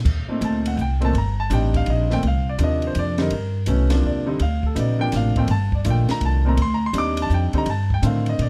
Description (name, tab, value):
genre	modal jazz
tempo	165 BPM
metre	3/4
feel	swing 65% on 8ths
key	C dorian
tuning	A4 = 442 Hz
part	upright bass	bass	0.0-8.5 s	G1 to Bb2	-23 LUFS	equal	none
part	compact cocktail drum kit	drums	0.1-8.5 s	crash cymbal, hi-hat, kick drum, ride cymbal, snare drum	-32 LUFS	equal	none
part	warm grand piano	accompaniment	0.3-8.5 s	Bb2 to D6	-26 LUFS	equal	none
room	little or no reverb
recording	none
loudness	-21 LUFS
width	mono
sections	0.1-8.5 A section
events	none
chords	0.1 Cm9; 4.4 Gm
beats	| 0.06 0.42 0.78 | 1.14 1.50 1.86 | 2.23 2.59 2.95 | 3.31 3.68 4.04 | 4.40 4.76 5.13 | 5.49 5.85 6.22 | 6.58 6.94 7.31 | 7.67 8.03 8.40